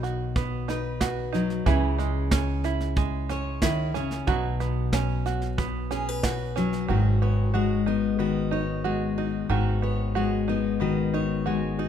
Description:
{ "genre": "acoustic folk duo or small band", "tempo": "92 BPM", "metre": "4/4", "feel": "straight", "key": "unclear", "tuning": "A4 = 439 Hz", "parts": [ { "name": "fingerpicked steel-string acoustic guitar", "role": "accompaniment", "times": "0.0-11.9 s", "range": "G#2 to C#5", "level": "-27 LUFS", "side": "left 5 dB", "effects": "none" }, { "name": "open-back banjo", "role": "arpeggios", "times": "0.0-11.9 s", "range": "D#3 to F#4", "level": "-31 LUFS", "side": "right 9 dB", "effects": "none" }, { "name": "upright bass", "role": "bass", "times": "0.0-11.9 s", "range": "G#1 to C#2", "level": "-29 LUFS", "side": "right 1 dB", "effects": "none" }, { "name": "soft brush drum kit", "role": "drums", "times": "0.0-6.8 s", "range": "kick drum, snare drum", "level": "-28 LUFS", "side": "right 1 dB", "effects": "none" } ], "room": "light reverb", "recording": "minimal, uncompressed stereo recording", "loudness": "-23 LUFS", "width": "side -9 dB against mid", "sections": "0.0-6.9 A section; 6.9-11.9 B section", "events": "none", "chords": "0.0 B; 1.7 C#m; 4.3 Bsus2; 6.9 G#m7", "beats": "0.36 1.01 | 1.67 2.32 2.97 3.62 | 4.28 4.93 5.58 6.24 | 6.89 7.54 8.20 8.85 | 9.50 10.16 10.81 11.46" }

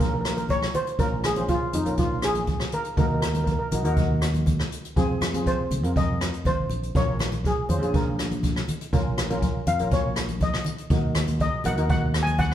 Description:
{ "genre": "calypso", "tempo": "121 BPM", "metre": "4/4", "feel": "straight", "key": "Bb minor", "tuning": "A4 = 439 Hz", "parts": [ { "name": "steel pan", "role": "melody", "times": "0.0-12.5 s", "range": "Eb4 to Ab5", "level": "-28 LUFS", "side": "equal", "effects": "none" }, { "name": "steel pan", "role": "accompaniment", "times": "0.0-12.4 s", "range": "C4 to C5", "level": "-31 LUFS", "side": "equal", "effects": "none" }, { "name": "fingered electric bass", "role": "bass", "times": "0.0-12.5 s", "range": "Ab1 to F2", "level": "-27 LUFS", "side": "equal", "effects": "none" }, { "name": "jazz brush drum kit", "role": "drums", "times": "0.0-12.5 s", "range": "hi-hat, kick drum, rim click", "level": "-26 LUFS", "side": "equal", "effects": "none" }, { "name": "congas", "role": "percussion", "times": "0.4-12.5 s", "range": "none", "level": "-34 LUFS", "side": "left 1 dB", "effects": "none" } ], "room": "wet stone room reverb, RT60 1.2 s", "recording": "band playing live in one room", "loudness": "-22 LUFS", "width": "side -11 dB against mid", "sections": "0.0-12.5 A section", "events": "steel pan solo 0.0-12.5", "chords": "0.0 Bbm7; 3.0 Ebm; 5.0 Fm7; 7.0 Bbm7; 10.9 Ebm", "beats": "0.00 0.50 | 0.99 1.49 1.99 2.48 | 2.98 3.48 3.97 4.47 | 4.97 5.46 5.96 6.46 | 6.95 7.45 7.94 8.44 | 8.94 9.43 9.92 10.42 | 10.91 11.41 11.90 12.39" }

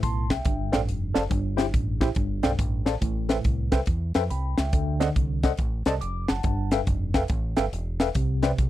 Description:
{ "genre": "uptempo gospel", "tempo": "140 BPM", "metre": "4/4", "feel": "swing 65% on 8ths", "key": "unclear", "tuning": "A4 = 442 Hz", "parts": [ { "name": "tine electric piano", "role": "accompaniment", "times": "0.0-8.7 s", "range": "G2 to D6", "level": "-27 LUFS", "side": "left 1 dB", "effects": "medium stereo tremolo" }, { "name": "deep dub fingered electric bass", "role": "bass", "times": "0.0-8.7 s", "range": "E1 to F2", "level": "-28 LUFS", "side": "equal", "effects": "none" }, { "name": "crisp fusion drum kit", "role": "drums", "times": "0.0-8.7 s", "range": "hi-hat, kick drum, snare drum", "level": "-26 LUFS", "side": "equal", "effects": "none" } ], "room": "little or no reverb", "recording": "dry, close 1970s-style studio recording", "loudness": "-23 LUFS", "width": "side -14 dB against mid", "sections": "0.0-8.7 A section", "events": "none", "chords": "0.5 G9sus4; 1.3 C/G; 2.2 G9sus4; 3.0 Am9; 4.7 D7b9; 6.4 G13; 8.2 Cmaj9", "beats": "0.02 0.45 0.88 | 1.30 1.73 2.16 2.59 | 3.02 3.44 3.87 4.30 | 4.73 5.16 5.58 6.01 | 6.44 6.87 7.30 7.73 | 8.15 8.58" }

